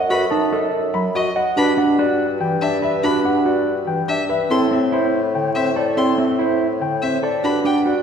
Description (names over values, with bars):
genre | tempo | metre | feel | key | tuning
classical, minimalist pattern music | 286 BPM (eighths) | 7/8 | straight | unclear | A4 = 439 Hz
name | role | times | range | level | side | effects
warm concert grand piano | melody | 0.0-8.0 s | A4 to B5 | -22 LUFS | left 5 dB | none
mellow electric guitar | arpeggios | 0.0-8.0 s | C4 to D#5 | -21 LUFS | right 4 dB | none
mellow bassoon | bass | 0.0-8.0 s | F#2 to A2 | -24 LUFS | equal | none
mellow bass clarinet | accompaniment | 0.1-7.6 s | D3 to F#4 | -24 LUFS | right 1 dB | none
rich violin | arpeggios | 0.1-7.8 s | D#5 to C6 | -27 LUFS | left 2 dB | none
room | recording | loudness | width
wet concert hall reverb, RT60 2.1 s | recorded in a church or concert hall | -16 LUFS | side -7 dB against mid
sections
0.0-8.0 A section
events
none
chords
0.0 B7/F#; 1.6 Emadd9/G; 4.5 Am; 7.4 Gmaj7